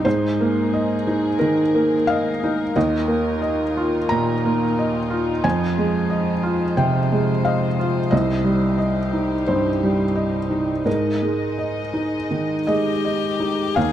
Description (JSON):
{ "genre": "neoclassical piano and strings", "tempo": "80-91 BPM", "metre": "4/4", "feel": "rubato", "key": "unclear", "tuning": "A4 = 441 Hz", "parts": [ { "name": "felt-muted upright piano", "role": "accompaniment", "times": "0.0-13.9 s", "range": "C2 to Bb5", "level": "-18 LUFS", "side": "right 1 dB", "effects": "none" }, { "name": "warm chamber string section", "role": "sustained chords", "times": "0.0-13.9 s", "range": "Ab3 to Eb5", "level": "-30 LUFS", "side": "left 6 dB", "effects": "none" }, { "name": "warm violin", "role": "melody", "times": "12.7-13.9 s", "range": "G4 to Ab4", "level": "-24 LUFS", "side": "left 6 dB", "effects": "none" } ], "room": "light reverb", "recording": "dark, warm production", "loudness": "-18 LUFS", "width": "side -11 dB against mid", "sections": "0.0-13.8 A section", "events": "none", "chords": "0.1 Absus2; 2.8 Ebsus2; 5.4 Fm7; 8.1 Cm; 10.9 Absus2" }